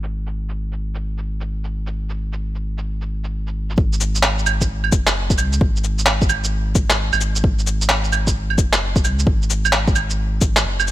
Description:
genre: future garage.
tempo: 131 BPM.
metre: 4/4.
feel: swing 65% on 16ths.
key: unclear.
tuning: A4 = 440 Hz.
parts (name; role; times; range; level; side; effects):
warm sub bass; bass; 0.0-10.9 s; F#1 to C#2; -22 LUFS; equal; sidechain pumping.
electronic shaker, cabasa, handclaps and claves; drums; 0.0-10.9 s; none; -19 LUFS; right 2 dB; low-pass filter on perc, low-pass filter on snare.
electronic kick drum; drums; 3.8-10.5 s; none; -18 LUFS; equal; overdrive.
room: little or no reverb.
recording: low-pass filter.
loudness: -17 LUFS.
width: side -14 dB against mid.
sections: 0.0-3.8 A section; 3.8-10.9 B section.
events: filter sweep 0.0-3.8.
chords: none.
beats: | 0.11 0.57 1.03 1.49 | 1.95 2.40 2.86 3.32 | 3.78 4.24 4.69 5.15 | 5.61 6.07 6.53 6.98 | 7.44 7.90 8.36 8.82 | 9.27 9.73 10.19 10.65.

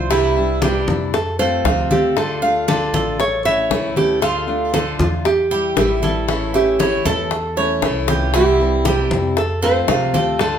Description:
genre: latin, Cuban son and guajira.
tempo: 117 BPM.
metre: 4/4.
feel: straight.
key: D minor.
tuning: A4 = 440 Hz.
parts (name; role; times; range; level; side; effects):
nylon-string guitar; melody; 0.0-10.6 s; E4 to E5; -20 LUFS; right 2 dB; none.
picked steel-string acoustic guitar; accompaniment; 0.0-10.6 s; C3 to F4; -22 LUFS; left 3 dB; none.
Cuban tres; arpeggios; 0.0-10.6 s; E4 to F5; -23 LUFS; right 4 dB; none.
upright bass; bass; 0.0-10.6 s; A1 to F2; -24 LUFS; right 1 dB; none.
bongos; percussion; 0.1-10.6 s; none; -23 LUFS; left 4 dB; none.
congas; percussion; 0.1-10.6 s; none; -25 LUFS; left 2 dB; none.
room: wet large studio reverb, RT60 0.8 s.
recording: band playing live in one room.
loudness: -15 LUFS.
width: side -8 dB against mid.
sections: 0.1-10.6 A section.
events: drum fill 8.1.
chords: 0.1 Cadd9; 1.1 F; 2.2 Dm; 3.2 A; 4.2 Dm; 5.3 Emadd11; 6.3 A; 8.3 C; 9.4 F.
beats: | 0.10 0.62 1.13 1.65 | 2.16 2.68 3.19 3.71 | 4.22 4.74 5.25 5.77 | 6.28 6.80 7.31 7.83 | 8.34 8.86 9.37 9.88 | 10.40.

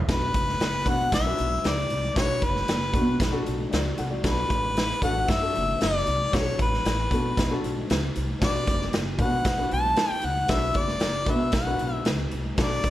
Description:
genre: uptempo 1960s-style soul.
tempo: 115 BPM.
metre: 4/4.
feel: straight.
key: B minor.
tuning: A4 = 439 Hz.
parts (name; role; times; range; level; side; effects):
upright bass; bass; 0.0-12.9 s; F#1 to B2; -29 LUFS; equal; none.
warm harmonica; melody; 0.1-12.9 s; B4 to A5; -26 LUFS; left 1 dB; slapback echo, plate reverb.
dark grand piano; accompaniment; 0.1-12.9 s; C#4 to F#5; -32 LUFS; left 2 dB; none.
raw garage drum kit; drums; 0.1-12.9 s; hi-hat, kick drum, snare drum; -26 LUFS; equal; none.
room: moderate club reverb, RT60 0.5 s.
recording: none.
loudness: -22 LUFS.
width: side -14 dB against mid.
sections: 0.1-12.9 A section.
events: none.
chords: 0.0 Bm7; 4.2 D; 8.4 Bm.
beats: | 0.08 0.60 1.12 1.64 | 2.16 2.69 3.21 3.73 | 4.25 4.77 5.29 5.81 | 6.33 6.85 7.38 7.90 | 8.42 8.94 9.46 9.98 | 10.50 11.02 11.54 12.06 | 12.59.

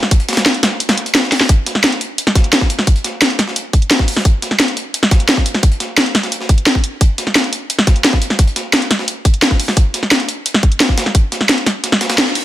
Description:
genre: drum and bass.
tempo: 174 BPM.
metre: 4/4.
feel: straight.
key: none.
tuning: none.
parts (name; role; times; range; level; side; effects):
breakbeat sampler-style drum kit; drums; 0.0-12.4 s; hi-hat, snare drum; -21 LUFS; equal; overdrive, high-pass filter on hats, high-pass filter on snare, high-pass filter on room.
drum and bass drum kit; drums; 0.0-12.4 s; hi-hat, snare drum; -14 LUFS; equal; none.
electronic kick drum; drums; 0.1-11.2 s; none; -12 LUFS; equal; none.
room: little or no reverb.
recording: none.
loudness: -12 LUFS.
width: side -14 dB against mid.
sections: 0.0-12.4 A section.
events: kick drops out 0.8-1.5, 11.8-12.4; drum fill 1.3; band accent 12.2.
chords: none.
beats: | 0.11 0.46 0.80 1.15 | 1.49 1.84 2.18 2.53 | 2.87 3.22 3.56 3.91 | 4.25 4.60 4.94 5.29 | 5.63 5.97 6.32 6.67 | 7.01 7.35 7.70 8.04 | 8.39 8.73 9.08 9.42 | 9.77 10.11 10.46 10.80 | 11.15 11.49 11.84 12.18.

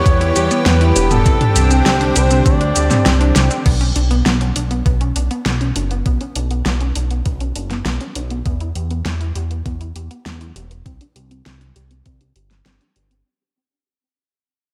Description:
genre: synthwave.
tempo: 100 BPM.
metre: 4/4.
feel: straight.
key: B minor.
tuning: A4 = 441 Hz.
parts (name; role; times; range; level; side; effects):
expressive synth lead; melody; 0.0-3.3 s; G4 to D5; -23 LUFS; equal; chorus, tape echo.
lush unison pad; sustained chords; 0.0-3.6 s; D3 to G4; -23 LUFS; equal; chorus, sidechain pumping.
chorused synth bass; bass; 0.0-13.2 s; E1 to E2; -20 LUFS; equal; tube saturation.
analog pluck; arpeggios; 0.1-13.2 s; B3 to G4; -26 LUFS; equal; chorus, tape echo.
electronic kick drum; drums; 0.1-12.2 s; none; -18 LUFS; equal; overdrive.
pop drum kit; drums; 0.1-13.2 s; crash cymbal, hi-hat, shaker, snare drum, toms; -22 LUFS; equal; none.
room: moderate lush hall reverb, RT60 1.8 s, digital ambience.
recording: dreamy mix soaked in reverb.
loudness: -16 LUFS.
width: mono.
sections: 0.0-3.7 A section; 3.7-13.3 B section.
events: drum fill 3.4; fade-out 3.7-13.3; filter sweep on synth arpeggio sound 3.7-13.3.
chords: 0.0 Em; 1.3 Csus2; 3.7 Bsus2; 8.5 E5; 10.9 Csus2.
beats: 0.06 0.66 | 1.26 1.86 2.46 3.06 | 3.66 4.26 4.86 5.46 | 6.06 6.66 7.26 7.86 | 8.46 9.06 9.66 10.26 | 10.86 11.46 12.06 12.66.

